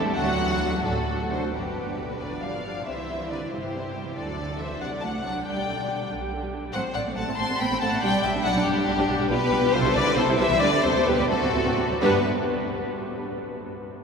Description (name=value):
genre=quick classical-period movement for string orchestra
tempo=82-95 BPM (dotted quarters)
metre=6/8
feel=rubato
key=G major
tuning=A4 = 440 Hz
part: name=warm studio viola section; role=accompaniment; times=0.0-12.3 s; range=C3 to F#4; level=-30 LUFS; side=right 2 dB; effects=none
part: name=warm studio double bass section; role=bass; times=0.0-12.3 s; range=G1 to G2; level=-34 LUFS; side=right 3 dB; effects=none
part: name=warm studio violin section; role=melody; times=0.2-12.3 s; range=G4 to C6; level=-26 LUFS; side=left 3 dB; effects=none
part: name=clear studio violin section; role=second line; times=0.2-12.3 s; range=B3 to A5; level=-30 LUFS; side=left 1 dB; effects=none
part: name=rich studio cello section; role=bass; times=0.2-12.3 s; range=G2 to C4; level=-30 LUFS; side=right 3 dB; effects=none
room=wet cathedral reverb, RT60 6.9 s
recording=minimal, uncompressed stereo recording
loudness=-22 LUFS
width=side -5 dB against mid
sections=0.0-1.5 A section; 1.5-12.0 B section; 12.0-13.4 C section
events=none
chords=0.2 D; 1.5 G; 2.2 G7; 2.9 C; 4.2 D; 4.8 D7/C; 5.5 G/B; 6.7 F#dim/A; 8.0 G/B; 9.3 G7/B; 10.0 C; 10.6 G/D; 11.3 D7; 12.0 G